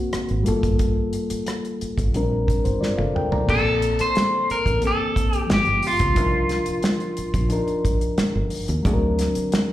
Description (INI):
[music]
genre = lush 1970s-style soul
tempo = 89 BPM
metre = 4/4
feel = straight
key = Bb major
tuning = A4 = 440 Hz
[part]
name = mellow reed electric piano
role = accompaniment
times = 0.0-9.7 s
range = D3 to Bb5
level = -24 LUFS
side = left 2 dB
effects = slapback echo
[part]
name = fingered electric bass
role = bass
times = 0.1-9.4 s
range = G1 to Eb2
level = -24 LUFS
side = equal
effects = none
[part]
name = damped 70s drum kit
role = drums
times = 0.1-9.7 s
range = crash cymbal, hi-hat, kick drum, rim click, snare drum, toms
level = -24 LUFS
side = right 1 dB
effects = none
[part]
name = electric guitar at the edge of break-up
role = melody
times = 3.5-7.8 s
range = F4 to C5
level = -22 LUFS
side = equal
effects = slapback echo
[sound]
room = moderate club reverb, RT60 0.5 s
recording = live gig heard through the venue's PA, club reverb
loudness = -19 LUFS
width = side -14 dB against mid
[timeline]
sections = 0.0-3.5 A section; 3.5-9.7 A section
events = drum fill 2.8-3.5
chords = 0.5 Gm9; 2.1 Bb69; 3.5 Bbmaj9; 5.5 G7b9; 6.2 Cm11; 8.9 Daug7